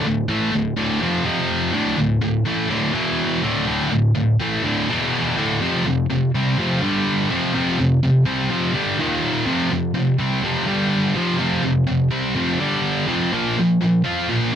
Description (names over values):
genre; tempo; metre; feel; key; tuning
metal; 124 BPM; 4/4; straight; D minor; A4 = 439 Hz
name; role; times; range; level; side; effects
scooped high-gain guitar; solo; 0.0-14.6 s; D2 to F4; -18 LUFS; equal; distortion
room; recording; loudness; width
light reverb; dry, close 1970s-style studio recording; -18 LUFS; side -9 dB against mid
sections
0.0-1.7 A section; 1.7-14.6 B section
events
none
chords
0.0 Dm; 1.3 F5; 1.7 D5; 3.0 E5; 3.4 D5; 4.9 E5; 5.4 D5; 5.6 F5; 6.8 G5; 7.3 F5; 9.0 Eb5; 9.5 F5; 10.7 G5; 11.2 F5; 12.6 G5; 13.1 F5; 13.3 Bb5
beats
0.30 0.78 1.26 | 1.75 2.23 2.71 3.19 | 3.68 4.16 4.64 5.13 | 5.61 6.09 6.58 7.06 | 7.54 8.03 8.51 8.99 | 9.47 9.96 10.44 10.92 | 11.41 11.89 12.37 12.85 | 13.34 13.82 14.30